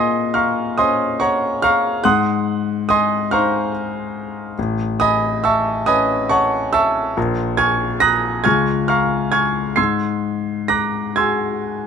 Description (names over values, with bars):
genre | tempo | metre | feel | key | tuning
classical, impressionist solo piano | 47 BPM (dotted quarters) | 6/8 | uneven beats, rubato | unclear | A4 = 441 Hz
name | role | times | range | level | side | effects
clear concert grand piano | solo | 0.0-11.9 s | A1 to C7 | -16 LUFS | equal | none
room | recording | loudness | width
light reverb | close, detailed microphones | -16 LUFS | side -7 dB against mid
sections
0.0-11.9 A section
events
none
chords
0.0 Bbmadd9; 2.0 Ab13; 4.6 Aadd9; 7.2 Bbm7; 8.5 Db; 9.8 Abaug7